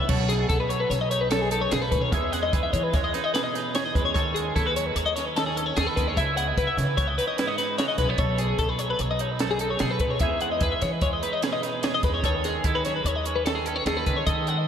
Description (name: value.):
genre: math rock and midwest emo.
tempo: 148 BPM.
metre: 5/4.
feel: straight.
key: unclear.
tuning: A4 = 442 Hz.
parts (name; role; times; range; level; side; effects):
twangy electric guitar; accompaniment; 0.0-14.7 s; E2 to A4; -31 LUFS; right 10 dB; spring reverb.
twelve-string electric guitar; arpeggios; 0.0-14.7 s; G#4 to F#5; -26 LUFS; left 3 dB; analog chorus, analog delay.
upright bass; bass; 0.0-14.7 s; B1 to E3; -29 LUFS; equal; none.
compact cocktail drum kit; drums; 0.1-14.6 s; crash cymbal, hi-hat, kick drum, snare drum; -29 LUFS; right 1 dB; none.
room: wet huge ambient reverb, RT60 4.0 s.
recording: dreamy mix soaked in reverb.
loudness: -22 LUFS.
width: side -8 dB against mid.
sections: 0.1-14.7 A section.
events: none.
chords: 0.1 B13; 2.1 Emaj7; 4.1 B13/D#; 6.2 C#m9; 8.2 B13; 10.2 Emaj7; 12.2 B13/D#.